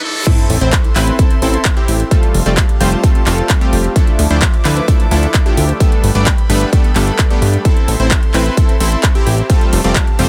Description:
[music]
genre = EDM, festival progressive house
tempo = 130 BPM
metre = 4/4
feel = straight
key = A minor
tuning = A4 = 440 Hz
[part]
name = riser, reverse cymbal and sub drop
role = sound effects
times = 0.0-2.1 s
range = none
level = -25 LUFS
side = equal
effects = none
[part]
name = rich chamber string section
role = sustained chords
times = 0.3-10.3 s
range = F3 to D6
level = -29 LUFS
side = equal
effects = sidechain pumping
[part]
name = supersaw stab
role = riff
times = 0.3-10.3 s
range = F3 to D5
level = -20 LUFS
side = equal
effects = sidechain pumping, dub echo
[part]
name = big-room dance drum kit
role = drums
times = 0.3-10.3 s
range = crash cymbal, handclaps, hi-hat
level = -23 LUFS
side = equal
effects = none
[part]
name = electronic kick drum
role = drums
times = 0.3-10.1 s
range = none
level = -15 LUFS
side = equal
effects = none
[part]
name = fat analog bass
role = bass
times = 0.5-10.3 s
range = F1 to G2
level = -16 LUFS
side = equal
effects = sidechain pumping
[sound]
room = little or no reverb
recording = high-pass filter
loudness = -13 LUFS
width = mono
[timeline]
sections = 0.3-10.3 A section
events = break 0.0; riser 0.0; reverse cymbal 0.0; drop 0.3-10.3; impact 0.3-2.1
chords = 0.3 Am; 2.1 Fadd9; 4.0 Dmadd9; 5.8 Gadd9; 7.7 Am; 9.5 Fadd9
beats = | 0.27 0.73 1.19 1.65 | 2.11 2.58 3.04 3.50 | 3.96 4.42 4.88 5.34 | 5.81 6.27 6.73 7.19 | 7.65 8.11 8.57 9.04 | 9.50 9.96

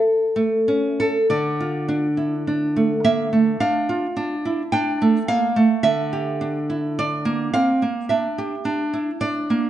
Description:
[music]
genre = classical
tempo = 47-54 BPM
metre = 4/4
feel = rubato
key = D minor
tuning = A4 = 445 Hz
[part]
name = nylon-string guitar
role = accompaniment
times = 0.0-9.7 s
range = D3 to G5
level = -18 LUFS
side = right 1 dB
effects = none
[sound]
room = moderate recital hall reverb, RT60 1.3 s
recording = nothing above 10.4 kHz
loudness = -19 LUFS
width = side -12 dB against mid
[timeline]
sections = 0.0-1.3 A section; 1.3-9.7 B section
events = none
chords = 0.0 A; 1.3 Dm; 5.8 Gm/D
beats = 0.04 | 1.28 2.45 3.60 4.73 | 5.85 6.98 8.10 9.21

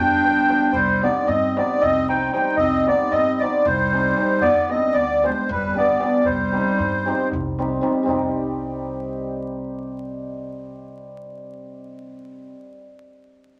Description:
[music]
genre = balkan folk, Balkan wedding band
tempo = 229 BPM (eighths)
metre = 7/8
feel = straight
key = C minor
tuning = A4 = 440 Hz
[part]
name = accordion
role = melody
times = 0.0-7.3 s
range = B4 to G5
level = -22 LUFS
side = equal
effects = light tremolo tuning
[part]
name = clear clarinet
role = second line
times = 0.0-7.3 s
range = G3 to Eb4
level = -26 LUFS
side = equal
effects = none
[part]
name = cimbalom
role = accompaniment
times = 0.0-12.8 s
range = G3 to G4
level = -28 LUFS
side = equal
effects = none
[part]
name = upright bass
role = bass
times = 0.0-12.5 s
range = G1 to G2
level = -35 LUFS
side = equal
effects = none
[part]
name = darbuka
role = percussion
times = 0.2-8.3 s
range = none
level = -38 LUFS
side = equal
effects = none
[sound]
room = wet club ambience, RT60 0.5 s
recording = vinyl crackle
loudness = -20 LUFS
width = mono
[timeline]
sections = 0.0-8.1 A section; 8.1-11.7 B section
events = none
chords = 0.0 G; 0.7 Cm; 4.4 G; 6.2 Cm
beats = 0.21 0.48 | 0.74 1.00 1.26 1.53 1.79 2.05 2.32 | 2.58 2.84 3.10 3.37 3.63 3.89 4.15 | 4.42 4.68 4.94 5.20 5.46 5.73 5.99 | 6.25 6.51 6.77 7.03 7.29 7.56 7.82 | 8.08 8.34 8.60 8.86 9.12 9.38 9.64 | 9.90 10.16 10.43 10.69 10.95 11.21 11.47

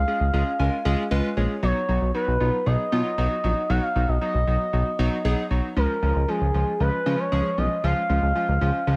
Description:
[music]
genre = synth-pop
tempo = 116 BPM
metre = 4/4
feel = straight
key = Db mixolydian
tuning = A4 = 440 Hz
[part]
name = expressive portamento lead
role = melody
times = 0.0-9.0 s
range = Ab4 to Gb5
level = -28 LUFS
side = equal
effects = chorus, delay
[part]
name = fat analog bass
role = bass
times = 0.0-9.0 s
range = Bb1 to Db3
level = -25 LUFS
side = equal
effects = none
[part]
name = warm analog keys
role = accompaniment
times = 0.1-9.0 s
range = F3 to Bb5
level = -30 LUFS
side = equal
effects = chorus
[sound]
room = light reverb, digital ambience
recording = none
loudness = -23 LUFS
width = mono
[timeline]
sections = 0.0-9.0 A section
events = synth keys fill 0.1-1.6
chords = 0.0 Db; 1.6 Cb; 5.8 Db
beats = 0.08 0.59 1.11 | 1.63 2.15 2.66 3.18 | 3.70 4.22 4.73 5.25 | 5.77 6.29 6.80 7.32 | 7.84 8.35 8.87

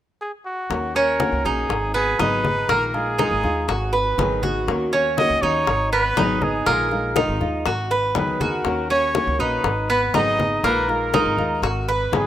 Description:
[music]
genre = latin, Cuban son and guajira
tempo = 121 BPM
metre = 4/4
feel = straight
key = Eb minor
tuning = A4 = 440 Hz
[part]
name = warm trumpet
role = melody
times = 0.2-12.3 s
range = Gb4 to Eb5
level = -23 LUFS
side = equal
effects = none
[part]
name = nylon-string guitar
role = accompaniment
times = 0.7-12.3 s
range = Eb3 to Ab4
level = -27 LUFS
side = left 3 dB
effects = none
[part]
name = upright bass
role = bass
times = 0.7-12.3 s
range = Ab1 to Eb2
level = -28 LUFS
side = equal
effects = none
[part]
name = bongos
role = percussion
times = 0.7-12.3 s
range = none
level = -27 LUFS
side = left 9 dB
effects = none
[part]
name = congas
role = percussion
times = 0.7-12.3 s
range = none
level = -28 LUFS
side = left 2 dB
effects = none
[part]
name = Cuban tres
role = arpeggios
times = 1.0-12.3 s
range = Bb3 to Cb5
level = -22 LUFS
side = right 2 dB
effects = none
[sound]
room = light reverb, small room ambience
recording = rough home demo mix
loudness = -18 LUFS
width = side -11 dB against mid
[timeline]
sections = 0.7-12.3 A section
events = none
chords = 0.0 N.C.; 0.7 Ebm7; 1.7 Abm7; 2.7 Bb7sus4; 3.7 Abm7; 4.7 Ebm7; 5.7 Abm7; 6.7 Bb7sus4; 7.7 Abm7; 8.7 Ebm7; 9.6 Abm7; 10.6 Bb7sus4; 11.6 Abm7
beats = 0.21 | 0.70 1.20 1.70 2.20 | 2.69 3.19 3.69 4.18 | 4.68 5.18 5.67 6.17 | 6.67 7.16 7.66 8.16 | 8.65 9.15 9.65 10.14 | 10.64 11.13 11.63 12.13

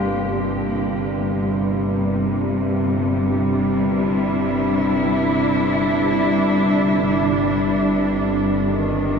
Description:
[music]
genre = ambient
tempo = free time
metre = none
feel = none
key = unclear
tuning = A4 = 438 Hz
[part]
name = muted chamber cello section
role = sustained chords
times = 0.0-9.2 s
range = C3 to G4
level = -20 LUFS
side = equal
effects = shimmer reverb
[part]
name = tubular bells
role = arpeggios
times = 0.0-1.1 s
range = D4 to F4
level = -35 LUFS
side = right 2 dB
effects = diffuse ambient delay, shimmer reverb
[part]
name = bowed-like drone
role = drone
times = 0.0-9.2 s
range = G1 to G2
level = -21 LUFS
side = equal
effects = built-in reverb
[sound]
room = wet cathedral reverb, RT60 6.0 s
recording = none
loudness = -17 LUFS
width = side -6 dB against mid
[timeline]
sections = 0.0-9.2 A section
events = none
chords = 0.0 C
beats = free time

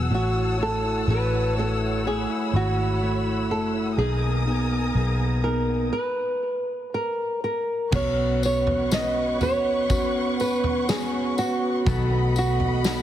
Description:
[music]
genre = pop ballad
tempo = 61 BPM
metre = 4/4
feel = straight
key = B major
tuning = A4 = 440 Hz
[part]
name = tine electric piano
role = accompaniment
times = 0.0-13.0 s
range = B2 to F#4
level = -29 LUFS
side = right 2 dB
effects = medium stereo tremolo
[part]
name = dark studio string section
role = sustained chords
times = 0.0-13.0 s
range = A3 to E6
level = -31 LUFS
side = left 1 dB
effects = none
[part]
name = fingerpicked plugged-in steel-string acoustic guitar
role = arpeggios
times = 0.0-13.0 s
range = B2 to C#5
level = -32 LUFS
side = left 4 dB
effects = none
[part]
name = vintage muted fingered electric bass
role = bass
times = 0.0-13.0 s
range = F#1 to B1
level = -25 LUFS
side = equal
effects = none
[part]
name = flamenco guitar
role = melody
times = 0.1-13.0 s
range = F#4 to D#5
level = -26 LUFS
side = right 1 dB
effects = none
[part]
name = natural country drum kit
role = drums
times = 7.9-13.0 s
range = crash cymbal, kick drum, snare drum, toms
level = -28 LUFS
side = equal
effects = none
[part]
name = tambourine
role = percussion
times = 7.9-13.0 s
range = none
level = -37 LUFS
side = left 7 dB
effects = none
[sound]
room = light reverb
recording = heavily compressed radio sound, multiband compression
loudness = -21 LUFS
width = side -11 dB against mid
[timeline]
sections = 0.0-7.9 A section; 7.9-13.0 B section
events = stop 5.9-7.9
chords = 0.1 A6; 4.0 G#madd9/B; 7.9 Bsus2; 11.9 B7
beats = | 0.10 1.07 2.04 3.01 | 3.98 4.95 5.93 6.93 | 7.92 8.91 9.89 10.88 | 11.86 12.84

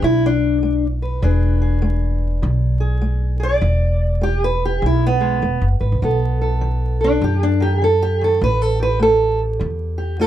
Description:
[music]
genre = acoustic country blues, solo or duo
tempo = 100 BPM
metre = 4/4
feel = swing 64% on 8ths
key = E mixolydian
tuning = A4 = 441 Hz
[part]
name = fingerpicked steel-string acoustic guitar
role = melody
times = 0.0-10.3 s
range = E2 to D5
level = -19 LUFS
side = equal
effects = none
[part]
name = upright bass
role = bass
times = 0.0-10.3 s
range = E1 to F#2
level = -18 LUFS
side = equal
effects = none
[sound]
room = light reverb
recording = dark, warm production, vinyl crackle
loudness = -16 LUFS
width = side -11 dB against mid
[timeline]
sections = 0.0-10.3 A section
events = steel-string acoustic guitar solo 0.0-10.3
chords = 0.0 E7; 6.0 B7; 8.4 A5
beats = 0.04 0.64 | 1.24 1.83 2.43 3.03 | 3.63 4.23 4.83 5.42 | 6.02 6.62 7.22 7.81 | 8.41 9.01 9.60 10.20

